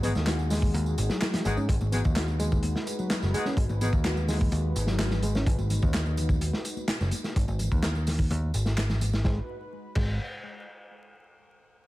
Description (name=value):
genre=breakbeat, breaks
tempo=127 BPM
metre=4/4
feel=straight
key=G# minor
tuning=A4 = 439 Hz
part: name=lush unison pad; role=sustained chords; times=0.0-9.5 s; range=G#3 to B4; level=-37 LUFS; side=equal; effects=chorus, sidechain pumping
part: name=reed electric piano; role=riff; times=0.0-5.4, 9.2-10.2 s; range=F#3 to F#4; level=-34 LUFS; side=equal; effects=ping-pong delay
part: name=bright horn section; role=stabs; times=0.0-3.9 s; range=G#3 to G#4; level=-37 LUFS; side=left 2 dB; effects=vintage 12-bit sampler grit, ping-pong delay
part: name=picked electric bass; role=bass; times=0.0-10.2 s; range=F#1 to G#2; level=-27 LUFS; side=equal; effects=low-pass filter
part: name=crunchy breakbeat drum kit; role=drums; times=0.0-10.1 s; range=crash cymbal, hi-hat, kick drum, snare drum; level=-29 LUFS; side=equal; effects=none
part: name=electronic tambourine and handclaps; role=drums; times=0.0-9.2 s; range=none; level=-38 LUFS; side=right 1 dB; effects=none
part: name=congas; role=percussion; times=0.0-9.1 s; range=none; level=-39 LUFS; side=left 2 dB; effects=none
room=small room ambience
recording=vinyl crackle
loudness=-24 LUFS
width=side -17 dB against mid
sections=0.0-1.7 A section; 1.7-9.2 B section; 9.2-11.1 C section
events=filter sweep on analog synth pad 1.7-9.2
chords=0.0 G#m7